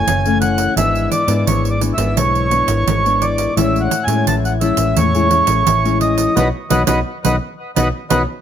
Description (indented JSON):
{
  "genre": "samba and choro",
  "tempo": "86 BPM",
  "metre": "4/4",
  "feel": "straight",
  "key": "E major",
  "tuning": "A4 = 440 Hz",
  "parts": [
    { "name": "mellow accordion", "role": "melody", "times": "0.0-8.2 s", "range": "B4 to A5", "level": "-18 LUFS", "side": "right 2 dB", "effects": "tape echo" },
    { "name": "nylon-string guitar", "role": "accompaniment", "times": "0.0-8.2 s", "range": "G#2 to E4", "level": "-19 LUFS", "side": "left 5 dB", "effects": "none" },
    { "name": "vintage muted fingered electric bass", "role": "bass", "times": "0.0-8.2 s", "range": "F#1 to A2", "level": "-19 LUFS", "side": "equal", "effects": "none" },
    { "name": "pandeiro", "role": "percussion", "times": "0.1-8.3 s", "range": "none", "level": "-22 LUFS", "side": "right 6 dB", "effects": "none" }
  ],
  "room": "light reverb",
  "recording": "none",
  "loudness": "-13 LUFS",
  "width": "side -9 dB against mid",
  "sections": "0.0-8.4 A section",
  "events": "band accent 6.4-8.4",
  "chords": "0.0 F#m7; 0.8 E7/G#; 3.6 Amaj7; 6.4 B",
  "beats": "0.07 | 0.77 1.47 2.17 2.87 | 3.57 4.27 4.97 5.67 | 6.37 7.07 7.77"
}